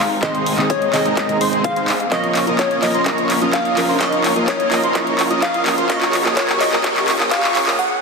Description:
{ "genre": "EDM, festival progressive house", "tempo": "127 BPM", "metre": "4/4", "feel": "straight", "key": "unclear", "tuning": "A4 = 440 Hz", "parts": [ { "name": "glassy wavetable pluck", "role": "melody", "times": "0.0-8.0 s", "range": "Db5 to Gb5", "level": "-21 LUFS", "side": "left 1 dB", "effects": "chorus, dub echo" }, { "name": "dark chamber string section", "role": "sustained chords", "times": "0.0-7.8 s", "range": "Ab3 to Bb4", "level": "-29 LUFS", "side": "left 2 dB", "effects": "none" }, { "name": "detuned saw bass", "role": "bass", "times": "0.0-7.8 s", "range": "none", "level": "barely audible", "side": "none", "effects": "none" }, { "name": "riser", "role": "sound effects", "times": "0.1-7.8 s", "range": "none", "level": "-27 LUFS", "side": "equal", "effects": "none" }, { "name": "warm grand piano", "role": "accompaniment", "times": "0.2-7.8 s", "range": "Eb3 to Bb4", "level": "-25 LUFS", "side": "right 2 dB", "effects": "vintage 12-bit sampler grit, sidechain pumping, dub echo" }, { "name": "wide unison lead", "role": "arpeggios", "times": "0.2-7.8 s", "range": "Bb5 to Eb6", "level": "-24 LUFS", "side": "equal", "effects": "sidechain pumping, dub echo" }, { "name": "dense compressed supersaw", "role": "riff", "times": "0.2-7.8 s", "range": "Ab3 to Eb5", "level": "-23 LUFS", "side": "equal", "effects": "sidechain pumping, low-pass filter, dub echo" }, { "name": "big-room dance drum kit", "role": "drums", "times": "0.2-7.8 s", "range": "handclaps, hi-hat", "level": "-21 LUFS", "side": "equal", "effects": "none" }, { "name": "electronic kick drum", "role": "drums", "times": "0.2-7.4 s", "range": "none", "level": "-24 LUFS", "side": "left 1 dB", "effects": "overdrive, high-pass filter on kick" } ], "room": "wet lush hall reverb, RT60 1.8 s, digital ambience", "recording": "dense, heavily limited modern master, high-pass filter", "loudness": "-15 LUFS", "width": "side -4 dB against mid", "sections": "0.0-8.0 A section", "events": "build-up 0.0-8.0; drum fill 0.0-7.8; filter sweep on supersaw synth 0.0-8.0; filter sweep on analog synth lead 0.0-8.0; riser 0.1-7.8; break 7.8", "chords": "0.0 Ab; 2.1 Bbm; 5.9 Gbadd9", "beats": "| 0.23 0.70 1.17 1.65 | 2.12 2.59 3.06 3.54 | 4.01 4.48 4.95 5.42 | 5.90 6.37 6.84 7.32 | 7.79" }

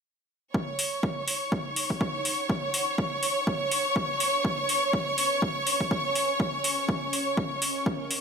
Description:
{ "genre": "piano house", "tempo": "123 BPM", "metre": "4/4", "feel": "swing 57% on 16ths", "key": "F# major", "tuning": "A4 = 442 Hz", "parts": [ { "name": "clear studio string section", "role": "sustained chords", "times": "0.5-8.2 s", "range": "C#5 to C#6", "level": "-27 LUFS", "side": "equal", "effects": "sidechain pumping" }, { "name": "electronic kick drum", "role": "drums", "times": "0.5-8.0 s", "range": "none", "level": "-29 LUFS", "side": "equal", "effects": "overdrive, high-pass filter on kick, high-pass filter on room" }, { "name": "granular cloud pad", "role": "texture", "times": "1.3-8.2 s", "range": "C#4 to G#5", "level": "-40 LUFS", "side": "left 1 dB", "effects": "built-in reverb, sidechain pumping" }, { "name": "electronic hi-hat", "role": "drums", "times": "0.8-8.2 s", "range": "none", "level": "-29 LUFS", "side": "equal", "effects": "overdrive" } ], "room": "little or no reverb", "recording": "none", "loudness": "-25 LUFS", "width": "side -6 dB against mid", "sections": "0.5-8.2 A section", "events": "fade-in on ambient pad 0.5-8.2", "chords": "0.5 F#6", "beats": "| 0.54 1.03 1.52 2.01 | 2.50 2.98 3.47 3.96 | 4.45 4.93 5.42 5.91 | 6.40 6.89 7.37 7.86" }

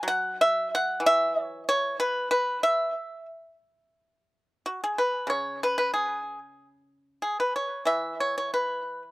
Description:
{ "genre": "chinese traditional, Chinese solo plucked strings", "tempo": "88-96 BPM", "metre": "2/4", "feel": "rubato", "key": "E gong mode", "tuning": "A4 = 440 Hz", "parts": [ { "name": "pipa", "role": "solo", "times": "0.0-9.1 s", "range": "C#3 to F#5", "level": "-24 LUFS", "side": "equal", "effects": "none" } ], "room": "little or no reverb", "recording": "recorded outdoors, with no room sound", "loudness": "-24 LUFS", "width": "side -19 dB against mid", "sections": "0.0-4.0 A section; 4.0-9.1 B section", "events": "none", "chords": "none", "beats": "| 0.05 0.69 | 1.33 1.96 | 2.60 3.28 | 3.96 4.63 | 5.29 5.93 | 6.57 7.22 | 7.88 8.55" }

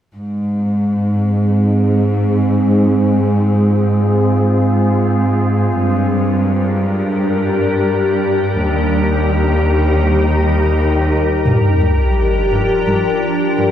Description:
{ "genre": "cinematic", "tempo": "85 BPM", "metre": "4/4", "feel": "straight", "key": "G phrygian", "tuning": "A4 = 437 Hz", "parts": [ { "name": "organ-like drone", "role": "sustained chords", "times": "1.1-13.7 s", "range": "F3 to Bb4", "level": "-16 LUFS", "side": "equal", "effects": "ensemble chorus, built-in reverb, low-pass filter" }, { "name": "warm studio cello section", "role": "bass", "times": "0.2-13.7 s", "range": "Eb2 to Ab2", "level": "-15 LUFS", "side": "equal", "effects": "none" }, { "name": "sub drop", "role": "sound effects", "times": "11.5-13.7 s", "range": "none", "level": "-16 LUFS", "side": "equal", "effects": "none" } ], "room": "moderate scoring stage reverb, RT60 1.9 s", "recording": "dark, warm production", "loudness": "-13 LUFS", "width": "side -10 dB against mid", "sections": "0.2-11.5 A section; 11.5-13.7 B section", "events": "filter sweep on synth drone 0.2-11.5; build-up 11.5-13.7; impact 11.5-13.7", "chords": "0.2 Ab; 3.0 Fm/Ab; 5.8 Gm; 8.6 Eb; 11.5 Gm7", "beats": "| 0.16 0.86 1.57 2.28 | 2.98 3.69 4.39 5.10 | 5.81 6.51 7.22 7.92 | 8.63 9.34 10.04 10.75 | 11.45 12.16 12.87 13.57" }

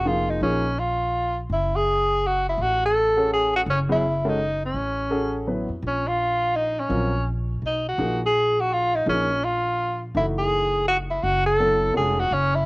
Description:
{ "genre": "modal jazz", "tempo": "166 BPM", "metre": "3/4", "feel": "swing 63% on 8ths", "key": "Bb phrygian", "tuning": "A4 = 442 Hz", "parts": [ { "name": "mellow tenor saxophone", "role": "melody", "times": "0.0-12.7 s", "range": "Db4 to A4", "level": "-21 LUFS", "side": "equal", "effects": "cassette tape" }, { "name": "upright bass", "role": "bass", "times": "0.0-12.7 s", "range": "F1 to F2", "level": "-28 LUFS", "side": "equal", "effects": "none" }, { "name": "warm baby grand piano", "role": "accompaniment", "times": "0.1-0.6, 3.2-12.2 s", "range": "Fb3 to Cb5", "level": "-27 LUFS", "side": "equal", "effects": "none" } ], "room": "light reverb, small room ambience", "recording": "home recording on cassette", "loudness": "-20 LUFS", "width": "side -26 dB against mid", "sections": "0.0-12.7 A section", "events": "none", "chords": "0.0 Bbm11; 1.5 Gbmadd9; 5.8 Bbm; 10.1 Gbm11", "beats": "0.06 | 0.42 0.78 1.14 | 1.50 1.86 2.22 | 2.58 2.94 3.30 | 3.66 4.02 4.38 | 4.74 5.10 5.46 | 5.82 6.18 6.54 | 6.90 7.26 7.62 | 7.98 8.34 8.70 | 9.06 9.42 9.78 | 10.14 10.51 10.87 | 11.23 11.59 11.95 | 12.31" }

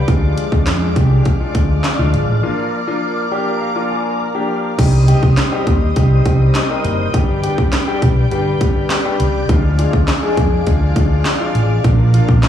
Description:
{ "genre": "dance-pop", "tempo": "102 BPM", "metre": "4/4", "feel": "straight", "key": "C minor", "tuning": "A4 = 440 Hz", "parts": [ { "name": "warm concert grand piano", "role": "accompaniment", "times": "0.0-12.5 s", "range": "F3 to Bb5", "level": "-20 LUFS", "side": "left 3 dB", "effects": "sidechain pumping, slapback echo" }, { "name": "ensemble organ-string", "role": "sustained chords", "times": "0.0-12.5 s", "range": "Ab3 to Eb6", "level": "-23 LUFS", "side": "equal", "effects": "ensemble chorus, sidechain pumping" }, { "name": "fingered electric bass", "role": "bass", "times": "0.0-12.4 s", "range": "F#1 to F2", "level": "-15 LUFS", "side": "equal", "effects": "sidechain pumping" }, { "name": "house drum kit", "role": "drums", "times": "0.1-12.5 s", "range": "crash cymbal, handclaps, hi-hat, kick drum, snare drum", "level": "-17 LUFS", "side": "equal", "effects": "overdrive" } ], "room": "light reverb", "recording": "live gig heard through the venue's PA, club reverb, small room ambience", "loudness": "-13 LUFS", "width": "side -10 dB against mid", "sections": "0.0-4.8 A section; 4.8-12.5 B section", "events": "break 2.4-4.8; grand piano fill 3.0-4.8", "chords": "0.1 Ddim; 2.4 Bb; 4.8 Cm; 7.1 G; 9.5 Ddim; 11.8 Bb", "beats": "| 0.08 0.67 1.26 1.84 | 2.43 3.02 3.61 4.20 | 4.79 5.37 5.96 6.55 | 7.14 7.73 8.31 8.90 | 9.49 10.08 10.67 11.26 | 11.84 12.43" }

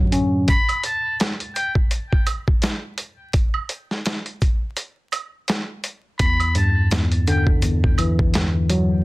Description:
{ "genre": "hip hop, boom-bap hip-hop", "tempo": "84 BPM", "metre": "4/4", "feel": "swing 57% on 16ths", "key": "E dorian", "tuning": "A4 = 440 Hz", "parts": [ { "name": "mellow tine electric piano", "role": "accompaniment", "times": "0.0-0.5, 6.2-9.0 s", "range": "E2 to C#4", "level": "-18 LUFS", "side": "equal", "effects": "medium stereo tremolo, cassette tape" }, { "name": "boom bap sampler-style drum kit", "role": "drums", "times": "0.1-8.9 s", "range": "hi-hat, kick drum, snare drum", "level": "-20 LUFS", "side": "equal", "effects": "vintage 12-bit sampler grit" }, { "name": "egg shaker and woodblock", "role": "percussion", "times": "0.1-8.9 s", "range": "none", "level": "-29 LUFS", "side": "right 8 dB", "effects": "none" }, { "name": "trumpet with metal mute", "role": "melody", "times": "0.5-1.7, 6.2-7.5 s", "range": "G5 to B5", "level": "-24 LUFS", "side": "left 1 dB", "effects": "digital delay" } ], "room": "light reverb", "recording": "dense, heavily limited modern master, vinyl crackle", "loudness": "-18 LUFS", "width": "side -20 dB against mid", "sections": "0.0-9.0 A section", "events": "break 0.5-6.2", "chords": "0.5 N.C.; 6.2 Em9", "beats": "| 0.48 1.20 1.91 2.63 | 3.34 4.06 4.77 5.49 | 6.20 6.91 7.63 8.34" }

